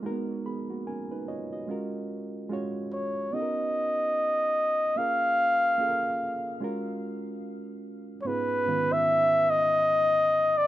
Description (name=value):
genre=R&B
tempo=73 BPM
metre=4/4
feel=swing 59% on 16ths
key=unclear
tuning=A4 = 440 Hz
part: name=breathy flugelhorn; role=melody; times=0.0-10.7 s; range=B4 to E#5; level=-24 LUFS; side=equal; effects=none
part: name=reed electric piano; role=accompaniment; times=0.0-10.7 s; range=G#2 to B5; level=-34 LUFS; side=right 3 dB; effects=none
room=studio reverb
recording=rough home demo mix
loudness=-25 LUFS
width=side -14 dB against mid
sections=0.0-8.2 A section; 8.2-10.7 B section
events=reed electric piano fill 0.0-1.7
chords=0.0 G#m7; 1.7 F#maj9; 3.3 Bmaj9; 5.0 A#m7; 6.6 F#maj9; 8.2 C#7/G#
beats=0.03 0.85 | 1.68 2.50 3.32 4.14 | 4.96 5.79 6.61 7.43 | 8.25 9.07 9.89